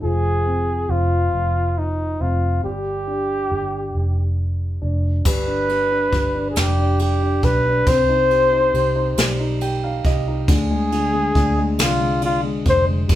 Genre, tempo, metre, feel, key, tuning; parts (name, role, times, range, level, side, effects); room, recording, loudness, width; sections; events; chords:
six-eight pop ballad; 46 BPM (dotted quarters); 6/8; straight; A4 = 440 Hz
mellow flugelhorn; melody; 0.0-13.2 s; Eb4 to C5; -20 LUFS; left 1 dB
warm concert grand piano; accompaniment; 0.0-13.2 s; D3 to G5; -25 LUFS; left 1 dB
vintage muted fingered electric bass; bass; 0.0-13.2 s; F1 to D2; -22 LUFS; equal
jazz brush drum kit; drums; 5.3-13.2 s; crash cymbal, kick drum, ride cymbal, snare drum; -22 LUFS; equal
wet studio reverb, RT60 0.6 s; band playing live in one room; -17 LUFS; side -13 dB against mid
0.0-5.3 A section; 5.3-13.2 B section
grand piano fill 9.2-10.5
0.0 Fm; 2.6 G5; 5.3 G; 7.9 Cm; 10.5 Ddim